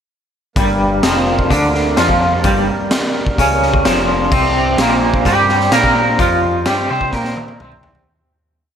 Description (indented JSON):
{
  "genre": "psychedelic rock",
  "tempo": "128 BPM",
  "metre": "4/4",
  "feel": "straight",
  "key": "G minor",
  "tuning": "A4 = 440 Hz",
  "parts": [
    { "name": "pedal harmonium", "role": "sustained chords", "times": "0.6-8.0 s", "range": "G3 to C5", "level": "-24 LUFS", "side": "right 4 dB", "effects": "none" },
    { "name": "twangy electric guitar", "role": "riff", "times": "0.6-8.1 s", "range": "F2 to C5", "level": "-14 LUFS", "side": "equal", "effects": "tremolo, double-tracked left and right, analog delay" },
    { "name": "growling picked electric bass", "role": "bass", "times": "0.6-8.0 s", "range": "F1 to C3", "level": "-21 LUFS", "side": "equal", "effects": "overdrive" },
    { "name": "raw garage drum kit", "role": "drums", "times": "0.6-8.1 s", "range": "crash cymbal, hi-hat, kick drum, snare drum, toms", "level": "-18 LUFS", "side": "equal", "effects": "analog delay" }
  ],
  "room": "light reverb",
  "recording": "echo-heavy mix",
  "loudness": "-12 LUFS",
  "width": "side -8 dB against mid",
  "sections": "0.6-8.1 riff",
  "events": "fade-out 6.2-8.1; drum fill 7.1-8.1",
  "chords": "0.6 Gm; 4.3 C5",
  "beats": "| 0.57 1.04 1.51 1.98 | 2.45 2.92 3.38 3.85 | 4.32 4.79 5.26 5.73 | 6.20 6.67 7.14 7.61"
}